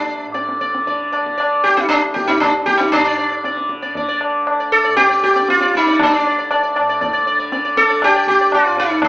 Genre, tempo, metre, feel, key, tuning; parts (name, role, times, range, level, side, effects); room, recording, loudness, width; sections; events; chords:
indian classical, Hindustani; 117 BPM; 3/4; straight; D raga bhairavi; A4 = 438 Hz
sitar; melody; 0.0-9.1 s; D4 to D5; -14 LUFS; equal
tanpura; drone; 0.0-9.1 s; D2 to D3; -30 LUFS; equal
tabla; percussion; 0.3-9.1 s; -20 LUFS; left 1 dB
wet large studio reverb, RT60 1.0 s; band playing live in one room, AM radio sound; -13 LUFS; side -20 dB against mid
0.0-2.9 A section; 2.9-9.1 B section
speeding up 0.0-9.1